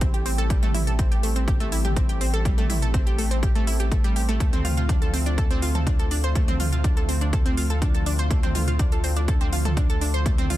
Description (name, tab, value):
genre	melodic techno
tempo	123 BPM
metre	4/4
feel	straight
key	unclear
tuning	A4 = 440 Hz
part	warm analog pad	sustained chords	0.0-10.6 s	D3 to G4	-32 LUFS	equal	chorus, phaser, sidechain pumping
part	wide unison pluck	arpeggios	0.0-10.5 s	G3 to C6	-29 LUFS	right 1 dB	cassette tape, sidechain pumping, digital delay
part	round analog bass	bass	0.0-10.6 s	A1 to D2	-24 LUFS	equal	sidechain pumping
part	electronic kick drum	drums	0.0-10.4 s	none	-23 LUFS	equal	overdrive
part	techno drum kit	drums	0.0-10.6 s	hi-hat, toms	-32 LUFS	right 1 dB	overdrive
room	little or no reverb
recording	dense, heavily limited modern master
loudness	-20 LUFS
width	side -14 dB against mid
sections	0.0-10.6 A section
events	none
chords	0.0 Am7; 4.4 Dm7